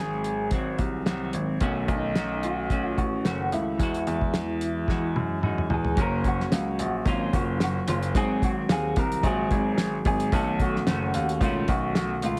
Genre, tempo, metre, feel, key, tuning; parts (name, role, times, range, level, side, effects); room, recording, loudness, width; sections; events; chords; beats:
indie pop, bedroom pop; 110 BPM; 4/4; swing 55% on 16ths; A4 = 440 Hz
electric guitar through a small old amp; melody; 0.0-12.4 s; Eb4 to Bb4; -33 LUFS; equal; subtle chorus, tape echo
semi-hollow electric guitar; accompaniment; 0.0-12.4 s; Ab2 to Gb4; -32 LUFS; equal; lush chorus, vibrato effect
clear baby grand piano; bass; 0.0-12.4 s; Gb1 to F#2; -31 LUFS; equal
cloth-damped thuddy drum kit; drums; 0.2-12.4 s; hi-hat, kick drum, snare drum, toms; -30 LUFS; equal
moderate small room reverb, RT60 0.5 s; heavily compressed radio sound; -26 LUFS; mono
0.0-6.0 A section; 6.0-12.4 B section
drum fill 4.9-6.0
0.0 Ab7; 1.6 Cb9; 3.8 Emaj9; 6.0 Gbmaj7; 8.2 Ab7; 10.3 Cb9
0.52 1.07 | 1.61 2.16 2.70 3.25 | 3.79 4.34 4.88 5.43 | 5.97 6.52 7.06 7.61 | 8.15 8.70 9.24 9.78 | 10.33 10.87 11.41 11.96